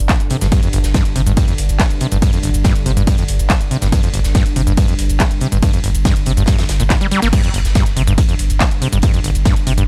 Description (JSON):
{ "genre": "driving peak-time techno", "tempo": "141 BPM", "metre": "4/4", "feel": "straight", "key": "unclear", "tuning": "A4 = 440 Hz", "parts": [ { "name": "saturated sub bass", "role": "bass", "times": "0.0-9.9 s", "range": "G1", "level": "-20 LUFS", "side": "equal", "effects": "overdrive, sidechain pumping, low-pass filter" }, { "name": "deep dark ambient pad", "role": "drone", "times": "0.0-9.9 s", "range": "G2 to D3", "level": "-30 LUFS", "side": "equal", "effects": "chorus, built-in reverb, sidechain pumping" }, { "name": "screaming distorted acid line", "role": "riff", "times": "0.1-9.8 s", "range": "G1 to Bb3", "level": "-21 LUFS", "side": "equal", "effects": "distortion, chorus, sidechain pumping, analog delay" }, { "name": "electronic kick drum", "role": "drums", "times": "0.1-9.5 s", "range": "none", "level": "-17 LUFS", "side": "equal", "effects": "none" }, { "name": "modern studio drum kit", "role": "drums", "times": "0.1-9.8 s", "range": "hi-hat, snare drum", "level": "-33 LUFS", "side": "equal", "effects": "none" }, { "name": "techno drum kit", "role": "drums", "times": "0.1-9.9 s", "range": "crash cymbal, handclaps, hi-hat, ride cymbal, shaker", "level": "-27 LUFS", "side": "equal", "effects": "sidechain pumping on hats, sidechain pumping on perc, sidechain pumping on cymbals" } ], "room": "little or no reverb", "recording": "transformer saturation", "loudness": "-15 LUFS", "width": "mono", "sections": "0.0-9.9 A section", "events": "none", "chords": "0.0 G5", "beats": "0.09 | 0.52 0.94 1.37 1.80 | 2.22 2.65 3.07 3.50 | 3.92 4.35 4.78 5.20 | 5.63 6.05 6.48 6.90 | 7.33 7.75 8.18 8.60 | 9.03 9.46" }